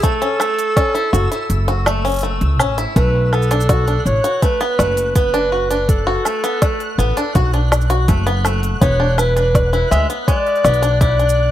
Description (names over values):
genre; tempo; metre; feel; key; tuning
folktronica; 82 BPM; 4/4; straight; B minor; A4 = 438 Hz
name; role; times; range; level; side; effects
breathy clarinet; melody; 0.0-11.5 s; A4 to E5; -19 LUFS; equal; vintage 12-bit sampler grit, ping-pong delay
bluegrass banjo; arpeggios; 0.0-11.5 s; G#3 to F#4; -21 LUFS; left 2 dB; none
electronic kick drum; drums; 0.0-11.2 s; none; -16 LUFS; equal; none
organic electronic drum kit; drums; 0.0-11.4 s; hi-hat, shaker, snare drum, woodblock; -22 LUFS; left 1 dB; none
flickering grainy texture; texture; 0.0-11.5 s; E6 to F#6; -30 LUFS; right 2 dB; built-in reverb
upright bass; bass; 1.1-11.5 s; E1 to D2; -17 LUFS; equal; none
room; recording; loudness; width
light reverb, studio ambience; none; -14 LUFS; side -12 dB against mid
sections
0.0-11.5 A section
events
kick drops out 1.5-3.0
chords
0.0 F#m7; 3.0 Bm7; 8.8 E7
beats
| 0.04 0.77 1.50 2.23 | 2.96 3.69 4.42 5.16 | 5.89 6.62 7.35 8.08 | 8.82 9.55 10.28 11.01